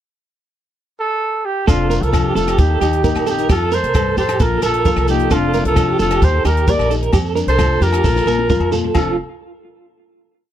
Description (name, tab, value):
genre	highlife guitar band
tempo	132 BPM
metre	4/4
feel	straight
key	F mixolydian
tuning	A4 = 440 Hz
part	warm trumpet	melody	1.0-9.2 s	F4 to D5	-20 LUFS	right 2 dB	none
part	bright alto saxophone	second line	1.7-9.2 s	D4 to Bb4	-24 LUFS	left 9 dB	none
part	nylon-string guitar	accompaniment	1.7-9.2 s	F2 to A4	-24 LUFS	left 8 dB	none
part	clean electric guitar	arpeggios	1.7-9.2 s	F4 to Bb4	-21 LUFS	right 7 dB	tremolo
part	upright bass	bass	1.7-9.2 s	F1 to F2	-19 LUFS	equal	none
part	compact cocktail drum kit	drums	1.7-9.1 s	hi-hat, kick drum, rim click, snare drum, toms	-20 LUFS	equal	none
part	agogo bells	percussion	1.7-9.1 s	none	-30 LUFS	left 4 dB	none
part	shekere	percussion	1.7-9.2 s	none	-28 LUFS	right 2 dB	none
room	little or no reverb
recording	dry, close 1970s-style studio recording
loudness	-14 LUFS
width	side -11 dB against mid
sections	0.0-1.7 pickup bar; 1.7-8.9 A section; 8.9-10.5 final chord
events	drum fill 8.0-8.9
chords	0.0 N.C.; 1.7 F6; 2.6 Eb; 3.5 F; 4.4 Bb5; 5.3 F6; 6.2 Eb; 7.1 F6; 8.0 Bb5; 8.9 F6